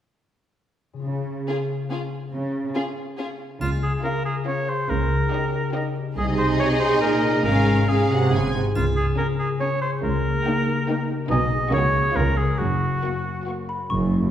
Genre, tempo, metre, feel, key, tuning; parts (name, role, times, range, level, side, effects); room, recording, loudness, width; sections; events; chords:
cinematic, playful, whimsical film cue; 140 BPM; 3/4; straight; Db major; A4 = 436 Hz
concert harp; arpeggios; 0.9-14.3 s; F#2 to Eb5; -26 LUFS; left 3 dB
rich studio cello section; bass; 1.0-14.3 s; F#2 to Db3; -26 LUFS; right 1 dB
rich studio violin section; melody; 1.5-13.8 s; Ab4 to C#6; -32 LUFS; left 2 dB
rich studio violin section; second line; 1.5-13.8 s; Eb4 to Ab4; -30 LUFS; equal
rich studio viola section; accompaniment; 1.5-13.8 s; Bb3 to Eb4; -30 LUFS; right 2 dB
warm oboe; second line; 3.6-13.5 s; F4 to D#5; -25 LUFS; right 1 dB
rich studio double bass section; bass; 3.6-14.3 s; F#1 to Db2; -26 LUFS; right 1 dB
triangle; percussion; 3.6-4.4, 8.8-9.6 s; -45 LUFS; left 1 dB
xylophone with rubber mallets; melody; 13.7-14.3 s; B5 to C#6; -29 LUFS; left 2 dB
mellow tuba; bass; 13.9-14.3 s; F#1; -23 LUFS; right 3 dB
wet scoring stage reverb, RT60 1.6 s; heard from further back in the room; -20 LUFS; side -10 dB against mid
1.1-3.6 A section; 3.6-13.9 B section
1.1 Db; 4.9 Eb7/Db; 6.2 Ab/C; 7.4 Db/Ab; 8.3 Ab; 8.8 Db; 10.0 Eb7/Db; 11.3 G#m/B; 11.7 F#/C#; 12.2 C#7; 12.6 F#